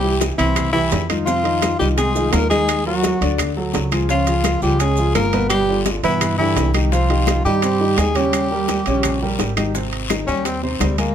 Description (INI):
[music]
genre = Afro-Cuban jazz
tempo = 170 BPM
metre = 4/4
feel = straight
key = Ab major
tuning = A4 = 437 Hz
[part]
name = breathy tenor saxophone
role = melody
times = 0.0-11.1 s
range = Eb3 to Bb4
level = -21 LUFS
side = left 2 dB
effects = none
[part]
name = mellow trombone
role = second line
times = 0.0-9.4 s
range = E3 to Bb3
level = -24 LUFS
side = right 8 dB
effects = none
[part]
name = warm grand piano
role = accompaniment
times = 0.0-11.1 s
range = Cb3 to Ab5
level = -23 LUFS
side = equal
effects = none
[part]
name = upright bass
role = bass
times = 0.0-11.1 s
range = G1 to G2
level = -22 LUFS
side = equal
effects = none
[part]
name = bongos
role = percussion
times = 0.0-11.1 s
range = none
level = -28 LUFS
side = left 6 dB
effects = none
[part]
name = congas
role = percussion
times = 0.0-11.1 s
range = none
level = -29 LUFS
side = left 3 dB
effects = none
[part]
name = guiro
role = percussion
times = 0.2-11.1 s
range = none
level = -32 LUFS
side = left 6 dB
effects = none
[part]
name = maracas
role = percussion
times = 0.2-11.1 s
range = none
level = -34 LUFS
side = right 7 dB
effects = none
[part]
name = timbales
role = percussion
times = 0.2-11.1 s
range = none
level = -26 LUFS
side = right 10 dB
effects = none
[part]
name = claves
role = percussion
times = 0.6-11.0 s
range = none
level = -32 LUFS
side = left 5 dB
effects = none
[sound]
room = light reverb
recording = none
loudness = -16 LUFS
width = side -9 dB against mid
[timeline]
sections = 0.0-9.7 A section; 9.7-11.1 B section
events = tenor saxophone solo 9.7-11.1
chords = 0.0 C; 1.3 Fm7; 2.7 Ebm; 3.4 D; 4.1 Db; 5.5 G7; 6.9 Cm; 8.3 Eb7; 9.7 Abmaj7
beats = 0.21 0.56 0.92 | 1.27 1.62 1.98 2.33 | 2.68 3.04 3.39 3.74 | 4.10 4.45 4.80 5.16 | 5.51 5.86 6.21 6.57 | 6.92 7.27 7.63 7.98 | 8.33 8.69 9.04 9.39 | 9.75 10.10 10.46 10.81